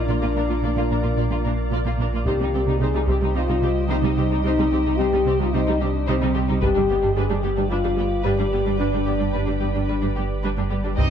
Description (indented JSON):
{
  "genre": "cinematic, hybrid orchestral and electronic film score",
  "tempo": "110 BPM",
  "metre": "4/4",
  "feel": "straight",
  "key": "unclear",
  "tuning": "A4 = 439 Hz",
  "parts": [
    { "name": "mellow French horn section", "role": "sustained chords", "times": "0.0-10.4 s", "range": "C4 to Ab4", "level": "-24 LUFS", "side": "left 4 dB", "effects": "none" },
    { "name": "organ-like drone", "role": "sustained chords", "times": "0.0-11.1 s", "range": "G3 to Eb5", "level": "-28 LUFS", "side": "right 1 dB", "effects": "ensemble chorus, built-in reverb" },
    { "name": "warm sub bass", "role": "bass", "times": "0.0-11.1 s", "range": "G1 to C2", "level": "-26 LUFS", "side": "equal", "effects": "none" },
    { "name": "warm symphonic violin section", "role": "melody", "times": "0.1-11.1 s", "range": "D4 to Eb5", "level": "-32 LUFS", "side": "left 4 dB", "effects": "none" },
    { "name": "rich symphonic viola section", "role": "accompaniment", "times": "0.1-11.0 s", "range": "G3 to F4", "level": "-29 LUFS", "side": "right 3 dB", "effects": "none" },
    { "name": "dark symphonic cello section", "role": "bass", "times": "0.1-11.0 s", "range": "G2 to C3", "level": "-27 LUFS", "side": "right 4 dB", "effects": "none" },
    { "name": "solo taiko drums", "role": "drums", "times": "2.3-3.3, 6.6-7.7, 11.0-11.1 s", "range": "none", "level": "-27 LUFS", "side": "equal", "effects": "none" },
    { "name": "rich symphonic violin section", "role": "second line", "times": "11.0-11.1 s", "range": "Eb4 to G4", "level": "-29 LUFS", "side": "right 1 dB", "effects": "none" },
    { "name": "sub drop", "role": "sound effects", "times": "11.0-11.1 s", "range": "none", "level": "-23 LUFS", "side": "equal", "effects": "none" }
  ],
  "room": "moderate scoring stage reverb, RT60 1.5 s",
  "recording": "dark, warm production",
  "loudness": "-19 LUFS",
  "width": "side -8 dB against mid",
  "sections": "0.0-11.0 A section",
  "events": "none",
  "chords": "0.0 Bb; 2.3 Cm; 6.6 G"
}